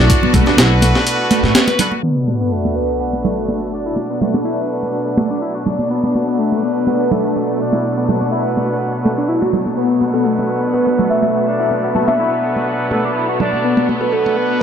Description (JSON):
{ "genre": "breakbeat, breaks", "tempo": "124 BPM", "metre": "4/4", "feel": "swing 54% on 16ths", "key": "B minor", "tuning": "A4 = 439 Hz", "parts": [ { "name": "rich symphonic string section", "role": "sustained chords", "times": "0.0-14.6 s", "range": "B2 to F#4", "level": "-22 LUFS", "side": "left 1 dB", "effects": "sidechain pumping" }, { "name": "overdriven synth lead", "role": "riff", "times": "0.0-14.6 s", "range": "A3 to B4", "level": "-19 LUFS", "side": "left 1 dB", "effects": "phaser, tube saturation, tape echo" }, { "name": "warm horn section", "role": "stabs", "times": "0.0-14.6 s", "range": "B3 to D5", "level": "-22 LUFS", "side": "right 2 dB", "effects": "tape echo" }, { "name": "upright bass", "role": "bass", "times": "0.0-1.5 s", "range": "B1 to A2", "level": "-16 LUFS", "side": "equal", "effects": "none" }, { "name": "breakbeat sampler-style drum kit", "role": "drums", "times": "0.1-1.9 s", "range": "hi-hat, kick drum, snare drum", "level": "-14 LUFS", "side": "equal", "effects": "small room ambience" }, { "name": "congas", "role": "percussion", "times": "0.2-14.3 s", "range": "none", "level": "-21 LUFS", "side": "right 2 dB", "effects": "none" }, { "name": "sub drop", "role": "sound effects", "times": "2.0-4.0 s", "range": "none", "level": "-22 LUFS", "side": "equal", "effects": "none" }, { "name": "kalimba", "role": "melody", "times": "10.1-14.6 s", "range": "A4 to E5", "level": "-20 LUFS", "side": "left 1 dB", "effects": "small speaker sound, vintage 12-bit sampler grit, tape echo" } ], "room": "light reverb, studio reverb", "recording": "low-pass filter", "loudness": "-14 LUFS", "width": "side -8 dB against mid", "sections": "0.0-2.0 A section; 2.0-14.6 B section", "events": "filter sweep on analog synth lead 0.0-2.0; break 1.1-2.0; impact 2.0-4.0; filter sweep 2.0-14.6", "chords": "0.0 Bm7", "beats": "| 0.10 0.58 1.06 1.55 | 2.03 2.52 3.00 3.48 | 3.97 4.45 4.94 5.42 | 5.90 6.39 6.87 7.36 | 7.84 8.32 8.81 9.29 | 9.77 10.26 10.74 11.23 | 11.71 12.19 12.68 13.16 | 13.64 14.13 14.61" }